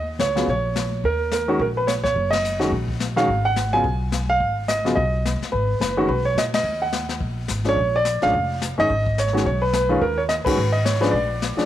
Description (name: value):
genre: jazz piano trio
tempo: 214 BPM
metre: 4/4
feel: swing 59% on 8ths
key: Eb minor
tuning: A4 = 445 Hz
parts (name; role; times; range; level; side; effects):
- clear baby grand piano; melody; 0.0-11.7 s; Db3 to Ab5; -20 LUFS; right 1 dB; none
- upright bass; bass; 0.0-11.6 s; F1 to Bb2; -25 LUFS; equal; none
- jazz brush drum kit; drums; 0.2-11.7 s; brushed snare drum, hi-hat, kick drum, ride cymbal, snare drum; -28 LUFS; left 5 dB; none
room: light reverb, small room ambience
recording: 1960s-style stereo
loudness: -19 LUFS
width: side -12 dB against mid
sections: 0.0-11.7 A section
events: band accent 2.3, 6.5, 10.4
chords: 0.0 Ebm7; 7.8 Bb(#9); 8.9 Abm; 10.0 Eb7(no3); 10.6 Abmadd11; 11.1 Bb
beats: 0.19 0.47 0.75 | 1.03 1.31 1.59 1.88 | 2.16 2.44 2.72 3.00 | 3.28 3.56 3.84 4.12 | 4.40 4.68 4.96 5.24 | 5.53 5.81 6.09 6.37 | 6.65 6.93 7.21 7.49 | 7.77 8.05 8.33 8.61 | 8.89 9.17 9.45 9.73 | 10.02 10.29 10.58 10.86 | 11.14 11.42